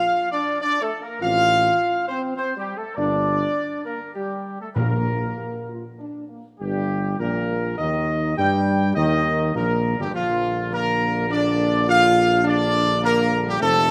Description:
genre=classical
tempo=102 BPM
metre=3/4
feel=straight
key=Bb major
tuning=A4 = 440 Hz
part: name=warm trumpet section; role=melody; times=0.0-13.9 s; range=F4 to G5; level=-24 LUFS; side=equal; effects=none
part: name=warm trombone section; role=sustained chords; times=0.0-13.9 s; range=G2 to F4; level=-31 LUFS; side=equal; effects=none
part: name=warm French horn section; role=sustained chords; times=1.2-13.9 s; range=F3 to G4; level=-29 LUFS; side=equal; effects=none
part: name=mellow tuba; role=bass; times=1.2-13.9 s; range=F1 to G2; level=-28 LUFS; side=equal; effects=none
part: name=timpani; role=percussion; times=4.8-5.6 s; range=Bb2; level=-28 LUFS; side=equal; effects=none
room=moderate concert hall reverb, RT60 1.9 s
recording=close, detailed microphones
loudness=-21 LUFS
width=mono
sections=0.0-6.6 A section; 6.6-13.9 B section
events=none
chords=0.0 Bb; 1.2 F/A; 3.0 Gm; 4.8 Bb; 6.6 Eb/G; 10.1 Bb

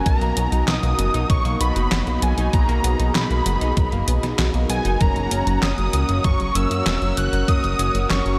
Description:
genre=synthwave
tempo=97 BPM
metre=4/4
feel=straight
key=unclear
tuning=A4 = 441 Hz
part: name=unison lead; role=melody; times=0.0-8.4 s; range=G#5 to F#6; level=-28 LUFS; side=equal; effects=tape echo
part: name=soft synth bell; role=second line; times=0.0-8.4 s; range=G#5 to F#6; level=-35 LUFS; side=equal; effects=none
part: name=soft supersaw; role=sustained chords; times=0.0-8.4 s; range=B2 to F#5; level=-31 LUFS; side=equal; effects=sidechain pumping
part: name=analog pluck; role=arpeggios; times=0.0-5.0 s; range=F#3 to D#4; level=-34 LUFS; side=equal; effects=chorus, delay
part: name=mellow synth brass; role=stabs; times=0.0-8.4 s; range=F#3 to A#4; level=-32 LUFS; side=equal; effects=chorus
part: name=chorused synth bass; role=bass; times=0.1-8.4 s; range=E1 to F#2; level=-24 LUFS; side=equal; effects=sidechain pumping
part: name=detuned 8-bit digital drum machine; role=drums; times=0.1-8.4 s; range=handclaps, hi-hat, snare drum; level=-30 LUFS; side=equal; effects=none
part: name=electronic kick drum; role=drums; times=0.1-7.6 s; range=none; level=-22 LUFS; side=equal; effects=none
part: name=mellow electric guitar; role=riff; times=5.0-8.3 s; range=F#3 to C#4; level=-36 LUFS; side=equal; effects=none
room=wet cathedral reverb, RT60 5.7 s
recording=dreamy mix soaked in reverb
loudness=-20 LUFS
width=mono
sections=0.0-8.4 A section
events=none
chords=0.1 Bmaj7; 5.0 F#

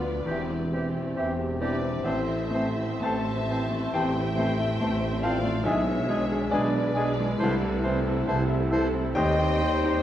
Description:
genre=classical, romantic movement for piano and orchestra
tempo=68 BPM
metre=4/4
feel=rubato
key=unclear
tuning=A4 = 439 Hz
part: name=clear baby grand piano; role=melody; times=0.0-10.0 s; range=A1 to A5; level=-28 LUFS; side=left 1 dB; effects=none
part: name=rich symphonic violin section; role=melody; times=0.0-10.0 s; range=D5 to A5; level=-40 LUFS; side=left 2 dB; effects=none
part: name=dark symphonic violin section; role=second line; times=0.0-10.0 s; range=B4 to E5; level=-36 LUFS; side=left 3 dB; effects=none
part: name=warm symphonic viola section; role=accompaniment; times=0.0-10.0 s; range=B3 to C5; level=-37 LUFS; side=right 2 dB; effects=none
part: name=mellow French horn section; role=sustained chords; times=0.0-10.0 s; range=E3 to E4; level=-34 LUFS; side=left 3 dB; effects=none
part: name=mellow tuba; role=bass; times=0.0-9.9 s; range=E1 to Eb2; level=-35 LUFS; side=right 3 dB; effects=none
part: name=rich symphonic double bass section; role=bass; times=0.0-9.9 s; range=E1 to Eb2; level=-34 LUFS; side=right 2 dB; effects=none
part: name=warm symphonic cello section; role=bass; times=0.0-9.9 s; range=D2 to C3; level=-34 LUFS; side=right 3 dB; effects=none
part: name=dark clarinet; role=second line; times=0.3-10.0 s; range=C4 to E4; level=-36 LUFS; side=left 1 dB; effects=none
part: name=mellow flute section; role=second line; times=0.3-10.0 s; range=E5 to C6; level=-36 LUFS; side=left 2 dB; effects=none
part: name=warm oboe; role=second line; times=0.3-10.0 s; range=G4 to C5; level=-37 LUFS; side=equal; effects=none
part: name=warm bassoon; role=accompaniment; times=0.3-10.0 s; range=E3 to G#3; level=-37 LUFS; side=right 1 dB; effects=none
room=moderate concert hall reverb, RT60 1.9 s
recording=none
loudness=-24 LUFS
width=side -11 dB against mid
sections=0.0-10.0 A section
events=none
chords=0.3 C/E; 2.1 Am; 5.7 G#dim/B; 7.4 Am/C; 9.2 Cm/Eb

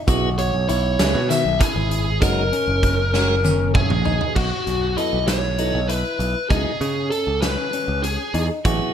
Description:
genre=progressive instrumental, band music in an uneven meter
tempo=196 BPM (eighths)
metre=7/8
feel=straight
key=B major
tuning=A4 = 440 Hz
part: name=tonewheel organ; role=accompaniment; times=0.1-8.9 s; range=F#3 to G#5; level=-26 LUFS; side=right 3 dB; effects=slow rotary speaker
part: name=clean electric guitar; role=arpeggios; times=0.1-8.9 s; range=D#3 to F#4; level=-28 LUFS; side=left 5 dB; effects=spring reverb
part: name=modern bright picked electric bass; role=bass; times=0.1-8.8 s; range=F#1 to C#3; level=-22 LUFS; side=right 1 dB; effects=none
part: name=big rock drum kit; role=drums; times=0.1-8.8 s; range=crash cymbal, hi-hat, kick drum, snare drum, toms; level=-24 LUFS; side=right 1 dB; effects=none
part: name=tube shaker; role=percussion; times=0.1-4.2 s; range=none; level=-33 LUFS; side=right 4 dB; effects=none
part: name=biting lead guitar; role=melody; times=0.4-8.5 s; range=F#4 to E5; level=-23 LUFS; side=left 1 dB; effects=overdrive, plate reverb
room=light reverb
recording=none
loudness=-18 LUFS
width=side -8 dB against mid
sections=0.0-4.4 A section; 4.4-8.9 B section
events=drum fill 3.1-4.4; tonewheel organ fill 3.4-4.4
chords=0.1 E6/B; 2.2 F#; 4.4 B7sus4; 6.5 C#m7

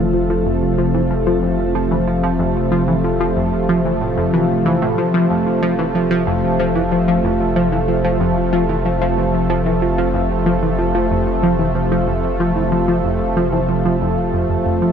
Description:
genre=ambient, sequencer-driven space music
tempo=93 BPM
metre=4/4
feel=straight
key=F major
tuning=A4 = 439 Hz
part: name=sweeping resonant pad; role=sustained chords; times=0.0-14.9 s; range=C3 to A4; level=-17 LUFS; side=equal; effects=chorus, shimmer reverb
part: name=tight sequenced synth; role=riff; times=0.0-14.9 s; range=F2 to F3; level=-19 LUFS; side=equal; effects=chorus, analog delay, shimmer reverb
part: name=warm sub bass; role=bass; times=0.0-14.9 s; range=F1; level=-26 LUFS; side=equal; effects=none
room=wet huge ambient reverb, RT60 8.1 s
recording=none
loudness=-15 LUFS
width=side -7 dB against mid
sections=0.0-14.9 A section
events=none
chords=0.0 F

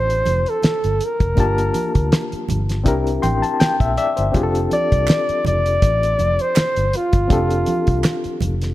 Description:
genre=lush 1970s-style soul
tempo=81 BPM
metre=4/4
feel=swing 54% on 16ths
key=F major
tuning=A4 = 440 Hz
part: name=breathy flugelhorn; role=melody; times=0.0-8.4 s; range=F4 to D5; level=-20 LUFS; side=equal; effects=none
part: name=barky reed electric piano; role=accompaniment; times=0.0-8.7 s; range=Bb3 to C6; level=-23 LUFS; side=left 3 dB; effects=overdrive, fast tremolo
part: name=vintage muted fingered electric bass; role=bass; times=0.0-8.7 s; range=F1 to D2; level=-21 LUFS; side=equal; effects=none
part: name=cloth-damped thuddy drum kit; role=drums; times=0.1-8.7 s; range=hi-hat, kick drum, snare drum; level=-19 LUFS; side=equal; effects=none
part: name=congas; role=percussion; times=0.3-8.6 s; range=none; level=-28 LUFS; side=right 4 dB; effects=none
part: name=group handclap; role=percussion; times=5.1-8.2 s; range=none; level=-30 LUFS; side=right 8 dB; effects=none
room=light reverb, studio reverb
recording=none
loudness=-16 LUFS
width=side -15 dB against mid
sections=0.0-8.7 A section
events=reed electric piano fill 2.9-4.3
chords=0.0 F69; 1.4 Gm7; 2.9 C9; 4.3 F69

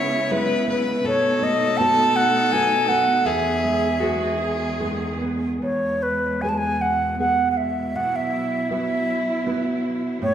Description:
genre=celtic folk, Celtic slow air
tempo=80 BPM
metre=3/4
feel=rubato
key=E major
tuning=A4 = 440 Hz
part: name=bright baroque flute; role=melody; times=0.0-10.3 s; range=B4 to A5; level=-22 LUFS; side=right 1 dB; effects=none
part: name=rich fiddle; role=second line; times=0.0-5.2 s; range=F#4 to C#5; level=-25 LUFS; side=left 4 dB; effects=none
part: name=nylon-string guitar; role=accompaniment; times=0.0-10.3 s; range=E2 to G#4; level=-26 LUFS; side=right 2 dB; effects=none
part: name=clear symphonic string section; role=sustained chords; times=0.0-10.3 s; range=E2 to G#4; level=-29 LUFS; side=equal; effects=none
room=wet recital hall reverb, RT60 1.5 s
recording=recorded in a church or concert hall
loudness=-19 LUFS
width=side -9 dB against mid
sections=0.0-5.6 A section; 5.6-10.3 B section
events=none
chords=0.0 C#m7; 1.0 B7; 3.3 Emaj7; 5.6 E; 8.0 Bsus4

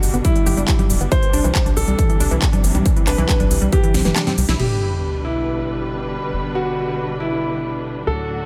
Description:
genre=uplifting trance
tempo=138 BPM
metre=4/4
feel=straight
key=G major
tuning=A4 = 440 Hz
part: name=warm concert grand piano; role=second line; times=0.0-8.5 s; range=E4 to C5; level=-26 LUFS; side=equal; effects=digital delay
part: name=muted studio string section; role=sustained chords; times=0.0-8.5 s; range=A2 to B4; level=-29 LUFS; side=equal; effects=sidechain pumping
part: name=unison pluck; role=arpeggios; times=0.0-4.6 s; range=E3 to G4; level=-27 LUFS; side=equal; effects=sidechain pumping, digital delay
part: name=tight sequencer bass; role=bass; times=0.0-8.5 s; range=D1 to D2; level=-26 LUFS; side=equal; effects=sidechain pumping
part: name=big-room dance drum kit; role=drums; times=0.0-4.7 s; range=congas, crash cymbal, handclaps, hi-hat, shaker, snare drum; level=-25 LUFS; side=equal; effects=studio reverb
part: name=electronic kick drum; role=drums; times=0.2-3.8 s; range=none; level=-20 LUFS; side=equal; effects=studio reverb
part: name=sub drop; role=sound effects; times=4.6-6.3 s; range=none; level=-27 LUFS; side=equal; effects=none
room=light reverb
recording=none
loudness=-19 LUFS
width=mono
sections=0.0-4.6 A section; 4.6-8.5 B section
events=drum fill 3.9-4.6; kick drops out 4.2-4.6; band accent 4.5; impact 4.6-6.3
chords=0.0 G; 1.1 Cadd9; 4.6 G

